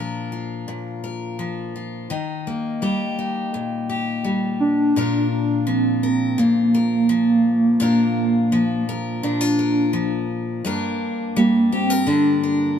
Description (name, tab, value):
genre	country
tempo	84 BPM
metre	4/4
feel	straight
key	Bb major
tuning	A4 = 438 Hz
part	picked steel-string acoustic guitar	accompaniment	0.0-12.8 s	G2 to Bb4	-23 LUFS	left 2 dB	none
part	pure sine lead	melody	4.6-12.8 s	Bb3 to D4	-18 LUFS	right 1 dB	chorus, tremolo
room	moderate plate reverb, RT60 2.8 s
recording	none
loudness	-18 LUFS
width	side -8 dB against mid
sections	0.0-5.0 A section; 5.0-12.8 B section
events	none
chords	0.0 Bb; 2.1 Eb; 5.0 Bb; 10.7 Gm